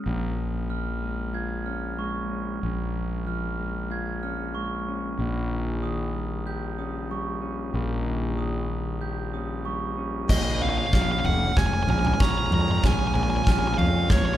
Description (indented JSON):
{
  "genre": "post-rock",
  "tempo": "94 BPM",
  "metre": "4/4",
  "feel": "straight",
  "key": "Bb minor",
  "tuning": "A4 = 440 Hz",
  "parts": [
    { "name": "glockenspiel with soft plastic mallets", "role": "arpeggios", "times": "0.0-14.4 s", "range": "Db6 to Ab6", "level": "-35 LUFS", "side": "right 6 dB", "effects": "none" },
    { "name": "mellow electric guitar", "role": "arpeggios", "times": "0.0-14.4 s", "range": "Bb2 to G4", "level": "-33 LUFS", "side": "left 4 dB", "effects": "spring reverb" },
    { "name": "fuzz fingered electric bass", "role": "bass", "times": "0.1-14.4 s", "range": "F1 to F2", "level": "-28 LUFS", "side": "equal", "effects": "overdrive" },
    { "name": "nasal lead guitar with a parked wah", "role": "melody", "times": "10.3-14.4 s", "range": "Db5 to Bb5", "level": "-27 LUFS", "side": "right 1 dB", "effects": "overdrive" },
    { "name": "dark studio string section", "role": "sustained chords", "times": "10.3-14.4 s", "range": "F3 to Db5", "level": "-37 LUFS", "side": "equal", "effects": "none" },
    { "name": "big rock drum kit", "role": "drums", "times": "10.3-14.2 s", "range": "crash cymbal, kick drum, snare drum, toms", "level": "-24 LUFS", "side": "equal", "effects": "none" }
  ],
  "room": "moderate concert hall reverb, RT60 2.4 s",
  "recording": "recorded in a church or concert hall",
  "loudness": "-24 LUFS",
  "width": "side -12 dB against mid",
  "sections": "0.0-10.3 A section; 10.3-14.4 B section",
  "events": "build-up 10.3-14.4; drum fill 10.3-14.4",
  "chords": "0.1 Bbm7; 5.2 Eb7/Bb; 10.3 Bbm7"
}